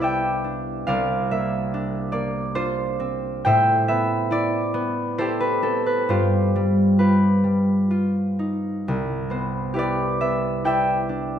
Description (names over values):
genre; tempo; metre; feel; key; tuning
classical, solo harp piece; 61-73 BPM; 3/4; rubato; C major; A4 = 440 Hz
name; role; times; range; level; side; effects
concert harp; solo; 0.0-11.4 s; C2 to G5; -20 LUFS; equal; none
room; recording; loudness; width
wet recital hall reverb, RT60 1.6 s; none; -20 LUFS; side -9 dB against mid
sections
0.0-11.4 A section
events
none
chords
0.0 Cmaj9; 0.9 Bbadd9/C; 3.5 Am9; 6.1 Gaug7; 8.9 Cmaj9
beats
0.02 | 0.87 1.71 2.55 | 3.47 4.32 5.18 | 6.08 6.98 7.91 | 8.87 9.76 10.65